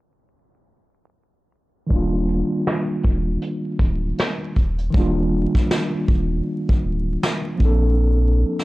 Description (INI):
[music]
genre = lo-fi hip hop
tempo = 79 BPM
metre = 4/4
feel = swing 60% on 16ths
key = Eb lydian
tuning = A4 = 443 Hz
[part]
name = mellow tine electric piano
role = accompaniment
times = 1.9-8.6 s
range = Eb3 to A4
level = -23 LUFS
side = equal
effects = medium stereo tremolo, cassette tape, low-pass filter
[part]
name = warm sub bass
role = bass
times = 1.9-8.4 s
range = D1 to Bb1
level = -20 LUFS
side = equal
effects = none
[part]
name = vintage brush drum kit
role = drums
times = 1.9-8.6 s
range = hi-hat, kick drum, snare drum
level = -20 LUFS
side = equal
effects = none
[sound]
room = light reverb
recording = dry, gritty hardware recording, transformer saturation, vinyl crackle, low-pass filter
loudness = -18 LUFS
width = side -19 dB against mid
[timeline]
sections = 1.9-4.9 A section; 4.9-8.6 B section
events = filter sweep 1.9-4.9; hi-hats muted 4.9-8.6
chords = 1.9 Ebmaj9; 4.6 N.C.; 4.9 Ebmaj9; 7.6 Bbmaj9